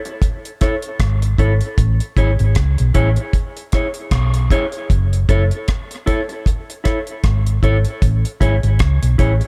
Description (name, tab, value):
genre	dub reggae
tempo	77 BPM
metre	4/4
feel	swing 57% on 16ths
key	A major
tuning	A4 = 437 Hz
part	mellow electric guitar	accompaniment	0.1-9.4 s	E4 to C#5	-26 LUFS	equal	tape echo
part	deep reggae drum kit	drums	0.1-9.5 s	hi-hat, kick drum, rim click	-20 LUFS	equal	none
part	hollow-body short-scale fingered electric bass	bass	1.0-9.4 s	F#1 to C#2	-17 LUFS	equal	none
room	small room ambience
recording	echo-heavy mix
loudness	-17 LUFS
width	mono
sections	0.0-9.5 A section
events	none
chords	0.0 F#m7 (rootless); 1.8 Amaj7; 4.9 F#m7; 8.0 Amaj7